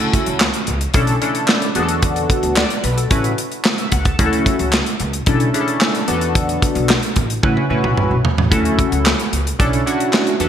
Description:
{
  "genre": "early-eighties boogie funk",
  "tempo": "111 BPM",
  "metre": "4/4",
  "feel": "straight",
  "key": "B minor",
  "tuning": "A4 = 440 Hz",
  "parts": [
    { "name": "chorused polysynth", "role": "accompaniment", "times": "0.0-10.5 s", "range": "B3 to A5", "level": "-19 LUFS", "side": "left 1 dB", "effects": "phaser" },
    { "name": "upright bass", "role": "bass", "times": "0.0-10.5 s", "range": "A1 to A2", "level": "-21 LUFS", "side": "equal", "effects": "none" },
    { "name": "modern studio drum kit", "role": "drums", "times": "0.0-10.5 s", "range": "handclaps, hi-hat, kick drum, snare drum, toms", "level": "-18 LUFS", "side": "equal", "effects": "gated reverb" }
  ],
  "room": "moderate lush hall reverb, RT60 2.0 s, small room ambience",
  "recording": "bright 1980s-style digital production",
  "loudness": "-14 LUFS",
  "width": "side -9 dB against mid",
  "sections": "0.0-10.5 A section",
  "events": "drum fill 7.4-8.5",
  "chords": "0.0 Dmaj9; 0.9 Bm11; 1.8 E9sus4; 3.1 A6; 4.2 Dmaj9; 5.3 Bm11; 6.1 E9sus4; 7.4 A6; 8.5 Dmaj9; 9.6 Bm11"
}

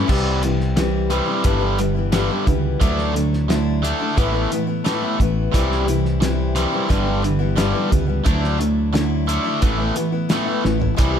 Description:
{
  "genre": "folk rock and heartland rock",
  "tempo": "88 BPM",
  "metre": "4/4",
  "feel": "straight",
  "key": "D major",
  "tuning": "A4 = 440 Hz",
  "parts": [
    { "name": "picked steel-string acoustic guitar", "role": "accompaniment", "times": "0.0-11.2 s", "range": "G2 to E4", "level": "-23 LUFS", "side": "left 7 dB", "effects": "none" },
    { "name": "biting overdriven guitar", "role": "riff", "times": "0.0-11.2 s", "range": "G2 to D4", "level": "-22 LUFS", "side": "right 2 dB", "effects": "none" },
    { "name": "fingered electric bass", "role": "bass", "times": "0.0-11.2 s", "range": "G1 to D2", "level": "-22 LUFS", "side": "right 1 dB", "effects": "none" },
    { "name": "cloth-damped thuddy drum kit", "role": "drums", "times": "0.1-11.1 s", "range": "crash cymbal, hi-hat, kick drum, snare drum, toms", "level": "-21 LUFS", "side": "right 1 dB", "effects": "none" }
  ],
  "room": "little or no reverb",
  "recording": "none",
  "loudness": "-17 LUFS",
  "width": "side -8 dB against mid",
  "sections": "0.1-11.2 A section",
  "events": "drum fill 10.6-11.0",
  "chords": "0.1 C; 1.5 G6; 2.8 Dadd9; 4.2 Asus2; 5.5 C; 6.9 G6; 8.3 Dadd9; 9.6 Asus2"
}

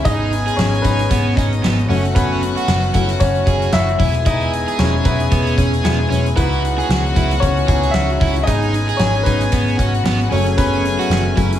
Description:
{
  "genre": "piano-driven pop",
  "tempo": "114 BPM",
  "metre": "4/4",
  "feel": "swing 56% on 16ths",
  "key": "unclear",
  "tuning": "A4 = 439 Hz",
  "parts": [
    { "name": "warm studio violin section", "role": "second line", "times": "0.0-11.6 s", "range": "D#4 to G#5", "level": "-24 LUFS", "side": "left 1 dB", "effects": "none" },
    { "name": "warm concert grand piano", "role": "accompaniment", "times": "0.0-11.6 s", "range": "E3 to E5", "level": "-21 LUFS", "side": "left 4 dB", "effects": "none" },
    { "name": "hand-pumped harmonium", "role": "sustained chords", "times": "0.0-11.6 s", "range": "C#3 to C#4", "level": "-28 LUFS", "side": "left 2 dB", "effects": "none" },
    { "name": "crunchy overdriven guitar", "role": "riff", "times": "0.1-11.5 s", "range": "B3 to G#4", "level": "-24 LUFS", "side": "right 6 dB", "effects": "none" },
    { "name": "vintage muted picked electric bass", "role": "bass", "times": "0.1-11.6 s", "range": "E1 to C#2", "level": "-19 LUFS", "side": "equal", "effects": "none" },
    { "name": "huge arena drum kit", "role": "drums", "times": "0.1-11.6 s", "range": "hi-hat, kick drum, snare drum", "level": "-20 LUFS", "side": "equal", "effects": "none" }
  ],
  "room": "small room ambience",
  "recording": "none",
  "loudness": "-14 LUFS",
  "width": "side -11 dB against mid",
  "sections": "0.0-11.6 A section",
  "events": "grand piano solo 0.0-11.6",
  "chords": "0.1 G#m; 1.9 F#m; 4.0 E; 6.4 C#m7; 8.5 G#m; 10.3 F#m"
}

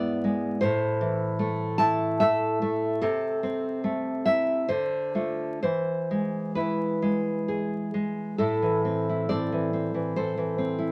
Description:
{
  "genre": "romantic piece for solo classical guitar",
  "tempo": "62-78 BPM",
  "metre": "3/4",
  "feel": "rubato",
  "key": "A minor",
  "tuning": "A4 = 439 Hz",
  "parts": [
    { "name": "nylon-string guitar", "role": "solo", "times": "0.0-10.9 s", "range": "G#2 to A5", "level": "-27 LUFS", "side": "equal", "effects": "none" }
  ],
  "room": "light reverb",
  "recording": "vinyl crackle",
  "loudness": "-27 LUFS",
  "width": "mono",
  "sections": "0.0-8.4 A section; 8.4-10.9 B section",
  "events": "none",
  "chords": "0.0 E7/G#; 0.6 Am; 3.0 Am/C; 4.7 Dm; 5.6 E; 8.4 Am"
}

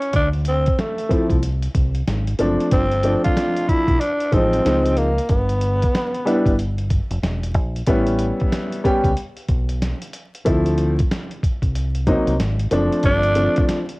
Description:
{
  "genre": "hip hop, jazz-hop",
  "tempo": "93 BPM",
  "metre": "4/4",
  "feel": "swing 62% on 16ths",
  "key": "D dorian",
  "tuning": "A4 = 440 Hz",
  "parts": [
    { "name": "growling tenor saxophone", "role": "melody", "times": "0.0-6.6, 13.1-13.7 s", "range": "A3 to F4", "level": "-21 LUFS", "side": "equal", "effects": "cassette tape" },
    { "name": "dusty soul sampler-style drum kit", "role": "drums", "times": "0.0-14.0 s", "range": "hi-hat, kick drum, snare drum", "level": "-22 LUFS", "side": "equal", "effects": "cassette tape" },
    { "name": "deep dub fingered electric bass", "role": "bass", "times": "0.1-13.5 s", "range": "E1 to D2", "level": "-21 LUFS", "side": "equal", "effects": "none" },
    { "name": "warm upright piano", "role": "accompaniment", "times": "1.1-13.8 s", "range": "F3 to G4", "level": "-20 LUFS", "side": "left 1 dB", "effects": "cassette tape" }
  ],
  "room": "light reverb",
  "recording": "home recording on cassette, vinyl crackle",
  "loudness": "-17 LUFS",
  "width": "side -24 dB against mid",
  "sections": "0.0-14.0 A section",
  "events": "none",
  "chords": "0.1 Dm9; 2.1 G#7; 2.7 G9sus4; 4.7 C#maj7; 5.3 Em; 7.9 A9; 10.5 Dm9; 12.4 G#7; 13.0 G9sus4"
}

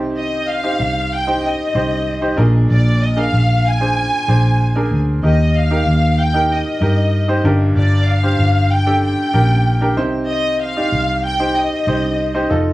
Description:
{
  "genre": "piano-driven pop",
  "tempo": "95 BPM",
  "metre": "4/4",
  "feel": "straight",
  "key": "unclear",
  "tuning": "A4 = 440 Hz",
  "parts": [
    { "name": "clear baby grand piano", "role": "accompaniment", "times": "0.0-12.7 s", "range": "G2 to D5", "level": "-20 LUFS", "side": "right 1 dB", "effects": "none" },
    { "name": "vintage muted fingered electric bass", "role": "bass", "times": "0.0-12.7 s", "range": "F1 to G2", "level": "-16 LUFS", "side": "equal", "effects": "none" },
    { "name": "rich studio violin section", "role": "melody", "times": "0.2-12.5 s", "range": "D5 to Ab5", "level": "-20 LUFS", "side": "left 1 dB", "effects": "cassette tape" }
  ],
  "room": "light reverb, small room ambience",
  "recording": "home recording on cassette",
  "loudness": "-14 LUFS",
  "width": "side -17 dB against mid",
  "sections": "0.0-12.7 A section",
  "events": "none",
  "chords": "0.0 Cm; 2.4 Bb7; 5.2 Eb; 7.4 Gm; 10.0 Cm"
}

